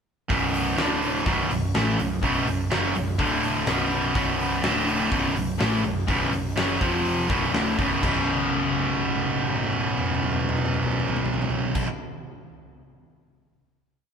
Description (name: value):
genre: hard rock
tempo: 124 BPM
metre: 4/4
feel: straight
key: B minor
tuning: A4 = 440 Hz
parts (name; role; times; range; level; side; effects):
- crunchy overdriven guitar; riff; 0.3-11.9 s; B1 to A3; -28 LUFS; left 7 dB; none
- high-gain distorted guitar; riff; 0.3-11.9 s; B1 to A3; -24 LUFS; right 4 dB; distortion
- hollow-body short-scale picked electric bass; bass; 0.3-11.8 s; B0 to A1; -32 LUFS; equal; none
- big rock drum kit; drums; 0.3-11.9 s; crash cymbal, hi-hat, kick drum, snare drum, toms; -28 LUFS; equal; none
room: moderate stone room reverb, RT60 1.2 s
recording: band playing live in one room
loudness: -22 LUFS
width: side -6 dB against mid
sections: 0.3-8.0 riff; 8.0-11.9 final chord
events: drum fill 8.3-11.8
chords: 0.3 B5; 0.8 D5; 1.3 B5; 3.2 D5; 3.7 B5; 4.6 D5; 5.1 B5; 6.8 F5; 7.3 Bm; 8.0 B5